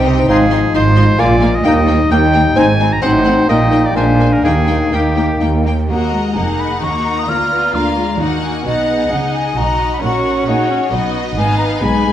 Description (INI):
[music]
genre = quick classical-period movement for symphony orchestra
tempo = 132 BPM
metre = 3/4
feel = rubato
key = Eb major, Eb minor from 5.9 s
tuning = A4 = 439 Hz
[part]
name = rich studio violin section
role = melody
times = 0.0-12.1 s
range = Db5 to C6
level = -25 LUFS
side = left 4 dB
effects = none
[part]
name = bright oboe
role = second line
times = 0.0-5.4 s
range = G4 to Bb5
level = -18 LUFS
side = equal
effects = none
[part]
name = concert flute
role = second line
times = 0.0-12.1 s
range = D#5 to F6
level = -20 LUFS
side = left 1 dB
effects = none
[part]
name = warm clarinet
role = second line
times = 0.0-5.6 s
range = D4 to F4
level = -21 LUFS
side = equal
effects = none
[part]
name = warm studio violin section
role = second line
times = 0.0-12.1 s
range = D4 to Bb5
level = -24 LUFS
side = left 3 dB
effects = none
[part]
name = rich studio viola section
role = accompaniment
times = 0.0-12.1 s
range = Ab3 to Gb4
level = -21 LUFS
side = equal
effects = none
[part]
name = warm bassoon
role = accompaniment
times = 0.0-5.6 s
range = Bb3 to C4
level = -21 LUFS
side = right 1 dB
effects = none
[part]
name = clear French horn section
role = sustained chords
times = 0.0-5.6 s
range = F3 to F4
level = -18 LUFS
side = left 4 dB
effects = none
[part]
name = rich studio cello section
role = bass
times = 0.0-12.1 s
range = D2 to Bb3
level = -20 LUFS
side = right 2 dB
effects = none
[part]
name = warm studio double bass section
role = bass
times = 0.0-12.1 s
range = F1 to Bb2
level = -19 LUFS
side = right 2 dB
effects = none
[sound]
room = wet scoring stage reverb, RT60 1.7 s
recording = none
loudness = -12 LUFS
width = side -11 dB against mid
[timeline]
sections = 0.0-5.9 A section; 5.9-12.1 B section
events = none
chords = 0.3 Fm7/Ab; 1.2 Bb7; 1.7 Eb; 2.6 Ab; 3.0 Adim7; 3.5 Eb/Bb; 4.0 Bb7; 4.4 Eb; 5.9 Ebm; 7.3 Bb/D; 8.2 Ebm; 8.7 B; 10.0 Gb/Bb; 10.9 B; 11.4 Fm7b5/Ab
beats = | 0.30 0.75 1.20 | 1.65 2.11 2.57 | 3.02 3.48 3.95 | 4.44 4.93 5.41 | 5.90 6.36 6.83 | 7.29 7.75 8.20 | 8.66 9.11 9.57 | 10.02 10.47 10.92 | 11.38 11.83